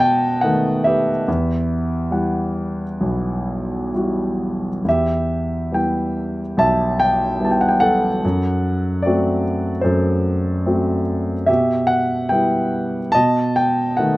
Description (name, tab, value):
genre	classical, lyrical solo piano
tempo	63-75 BPM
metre	4/4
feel	rubato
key	E minor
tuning	A4 = 439 Hz
part	warm concert grand piano	solo	0.0-14.2 s	B1 to A5	-17 LUFS	equal	none
room	little or no reverb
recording	close, detailed microphones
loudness	-17 LUFS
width	side -18 dB against mid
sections	0.0-4.9 A section; 4.9-14.2 A section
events	none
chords	0.0 B7; 1.3 Emadd9; 4.9 Em; 8.2 F#dim; 11.5 Em/B; 13.1 B7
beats	0.44 | 1.27 2.12 3.01 3.95 | 4.86 5.72 6.58 7.40 | 8.23 9.05 9.85 10.66 | 11.48 12.30 13.14 13.98